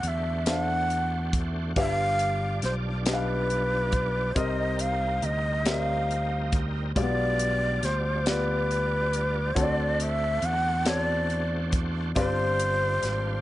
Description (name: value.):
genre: slow gospel.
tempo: 46 BPM (dotted quarters).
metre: 6/8.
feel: straight.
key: unclear.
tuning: A4 = 440 Hz.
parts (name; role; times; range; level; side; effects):
breathy shakuhachi; melody; 0.0-13.4 s; B4 to F#5; -28 LUFS; equal; none.
dark baby grand piano; accompaniment; 0.0-13.4 s; G2 to F#5; -32 LUFS; left 2 dB; none.
bright tonewheel organ; sustained chords; 0.0-13.4 s; G3 to D5; -36 LUFS; right 2 dB; slow rotary speaker, overdrive, chorus vibrato.
fingered electric bass; bass; 0.0-13.4 s; G1 to E2; -29 LUFS; equal; none.
tight funk drum kit; drums; 0.0-13.2 s; hi-hat, kick drum, snare drum; -29 LUFS; equal; none.
room: light reverb, small room reverb.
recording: nothing above 10.5 kHz.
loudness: -24 LUFS.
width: side -15 dB against mid.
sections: 0.0-13.4 A section.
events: none.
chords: 0.0 D7; 1.8 G7; 4.4 Cm7; 7.0 G7/B; 9.6 D7; 12.2 G7sus4.